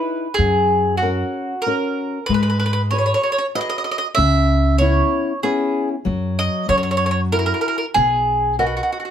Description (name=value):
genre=italian folk, Italian serenade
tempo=95 BPM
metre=3/4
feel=straight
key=unclear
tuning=A4 = 439 Hz
part: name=mandolin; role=melody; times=0.0-9.1 s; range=F#4 to E5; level=-19 LUFS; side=right 1 dB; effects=plate reverb
part: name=nylon-string guitar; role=accompaniment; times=0.0-9.1 s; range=C#3 to D#5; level=-23 LUFS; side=left 4 dB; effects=none
part: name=upright bass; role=bass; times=0.4-8.8 s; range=B1 to G#2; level=-20 LUFS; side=right 1 dB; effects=none
room=moderate small room reverb, RT60 0.5 s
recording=none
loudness=-16 LUFS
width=side -9 dB against mid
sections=0.0-9.1 A section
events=none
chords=0.4 F#; 2.3 G#m7; 4.2 C#m7; 6.1 D#m/F#; 6.7 F#7; 8.0 Bmaj7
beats=| 0.39 1.02 1.66 | 2.30 2.94 3.57 | 4.19 4.82 5.45 | 6.07 6.70 7.33 | 7.96 8.60